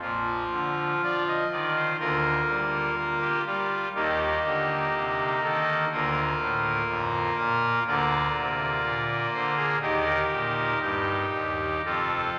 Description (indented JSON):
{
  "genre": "classical, chorale-style piece for pipe organ",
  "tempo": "61 BPM",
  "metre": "4/4",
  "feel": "rubato",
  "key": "Bb major",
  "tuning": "A4 = 440 Hz",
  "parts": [
    { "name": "pipe organ, trumpet", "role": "solo", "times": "0.0-12.4 s", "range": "F1 to Eb5", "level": "-26 LUFS", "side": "equal", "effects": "none" }
  ],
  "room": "wet church reverb, RT60 3.6 s",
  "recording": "none",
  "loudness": "-26 LUFS",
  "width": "mono",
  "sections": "0.0-12.4 A section",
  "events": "none",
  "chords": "0.0 Bb; 2.0 Bb/D; 4.0 Eb; 5.9 Bb/D; 9.8 Eb; 11.9 F"
}